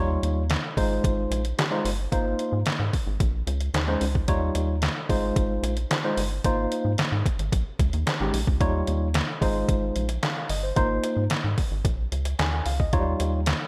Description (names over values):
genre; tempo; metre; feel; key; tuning
early-eighties boogie funk; 111 BPM; 4/4; straight; unclear; A4 = 438 Hz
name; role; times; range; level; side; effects
tine electric piano; accompaniment; 0.0-13.4 s; F3 to Ab5; -30 LUFS; equal; overdrive
rubbery square bass; bass; 0.0-13.5 s; G1 to Ab2; -29 LUFS; equal; none
detuned 8-bit digital drum machine; drums; 0.2-13.6 s; handclaps, hi-hat, kick drum, snare drum; -28 LUFS; equal; overdrive, gated reverb
room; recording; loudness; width
light reverb, digital ambience; none; -25 LUFS; mono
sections
0.0-13.7 A section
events
none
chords
0.0 Eb9; 0.8 Ab6; 2.1 Ab69; 3.2 Bbm11; 4.3 Eb9; 5.1 Ab6; 6.4 Ab69; 7.5 Bbm11; 8.6 Eb9; 9.4 Ab6; 10.8 Ab69; 11.9 Bbmadd11; 12.9 Eb9